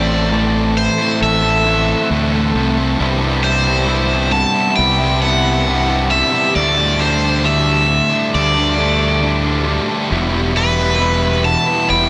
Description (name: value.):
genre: post-rock.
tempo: 67 BPM.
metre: 4/4.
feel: straight.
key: C lydian.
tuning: A4 = 440 Hz.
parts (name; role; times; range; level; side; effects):
cranked stack guitar; melody; 0.0-12.1 s; B4 to A5; -20 LUFS; equal; overdrive, digital delay.
warm symphonic string section; sustained chords; 0.0-12.1 s; G4 to B5; -32 LUFS; equal; none.
electric guitar through a small old amp; arpeggios; 0.0-12.1 s; C2 to A4; -27 LUFS; equal; digital delay.
fuzz guitar; riff; 0.0-12.1 s; C2 to A4; -20 LUFS; equal; distortion.
fuzz fingered electric bass; bass; 0.0-12.1 s; E1 to D2; -21 LUFS; equal; overdrive.
room: light reverb, digital ambience.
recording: none.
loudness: -15 LUFS.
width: mono.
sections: 0.0-12.1 A section.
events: none.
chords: 0.0 Am7; 3.0 Cmaj7; 6.6 D7sus4; 10.1 Em.